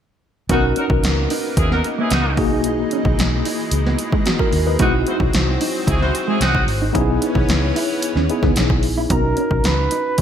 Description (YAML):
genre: polished 1980s jazz-funk pop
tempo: 112 BPM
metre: 4/4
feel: straight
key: B major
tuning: A4 = 440 Hz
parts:
  - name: clear horn section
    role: second line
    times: 0.5-6.6 s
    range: G#3 to B#4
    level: -24 LUFS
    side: equal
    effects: none
  - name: tine electric piano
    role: accompaniment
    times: 0.5-10.2 s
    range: A#3 to A#5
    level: -22 LUFS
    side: left 2 dB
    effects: overdrive, fast stereo tremolo, wide subtle chorus
  - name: lush unison pad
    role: sustained chords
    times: 0.5-9.1 s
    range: E3 to D#4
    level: -27 LUFS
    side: equal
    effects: chorus
  - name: mellow electric guitar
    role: riff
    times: 0.5-10.0 s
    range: G#3 to E4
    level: -26 LUFS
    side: right 5 dB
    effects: analog chorus
  - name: vintage muted fingered electric bass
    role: bass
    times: 0.5-10.2 s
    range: G#1 to D#2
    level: -20 LUFS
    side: equal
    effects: none
  - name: punchy analog drum machine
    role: drums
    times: 0.5-10.2 s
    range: hi-hat, kick drum, snare drum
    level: -21 LUFS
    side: equal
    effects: overdrive, gated reverb
  - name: breathy flugelhorn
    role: melody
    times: 9.1-10.2 s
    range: A#4 to B4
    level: -21 LUFS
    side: right 2 dB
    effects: none
room: light reverb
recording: bright 1980s-style digital production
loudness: -16 LUFS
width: side -9 dB against mid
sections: 0.5-9.1 A section; 9.1-10.2 B section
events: none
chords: 0.5 Bmaj7; 2.4 Emaj9#11/B; 4.8 G#7b13/B; 7.0 C#m7/B; 9.1 Bmaj7